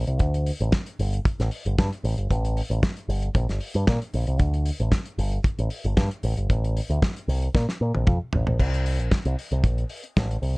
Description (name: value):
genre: disco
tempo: 114 BPM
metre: 4/4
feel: straight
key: unclear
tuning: A4 = 440 Hz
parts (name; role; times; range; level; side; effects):
- picked electric bass with an envelope filter; bass; 0.0-10.6 s; G1 to Bb2; -23 LUFS; equal; none
- damped 70s drum kit; drums; 0.1-10.6 s; crash cymbal, hi-hat, kick drum, snare drum, toms; -24 LUFS; equal; none
room: little or no reverb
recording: dark, warm production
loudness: -22 LUFS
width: side -30 dB against mid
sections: 0.0-8.6 A section; 8.6-10.6 B section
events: drum fill 7.5-8.6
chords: none